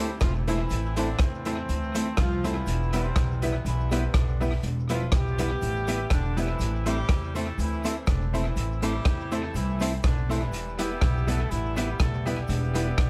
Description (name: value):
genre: ska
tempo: 122 BPM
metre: 4/4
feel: swing 53% on 8ths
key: A minor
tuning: A4 = 439 Hz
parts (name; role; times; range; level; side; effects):
- clear horn section; melody; 0.0-13.1 s; C3 to A4; -35 LUFS; equal; tape echo
- archtop guitar, miked and amplified; accompaniment; 0.0-12.9 s; G3 to E4; -34 LUFS; equal; none
- tack piano; stabs; 0.0-12.9 s; B3 to C5; -38 LUFS; equal; none
- upright bass; bass; 0.0-13.1 s; E1 to E2; -31 LUFS; equal; none
- raw garage drum kit; drums; 0.2-13.1 s; hi-hat, kick drum, rim click; -31 LUFS; equal; none
- cabasa; percussion; 0.2-13.1 s; none; -56 LUFS; equal; none
room: little or no reverb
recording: none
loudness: -27 LUFS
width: mono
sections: 0.0-13.1 A section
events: none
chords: 0.0 Am; 2.7 Em; 6.6 Am; 10.5 Em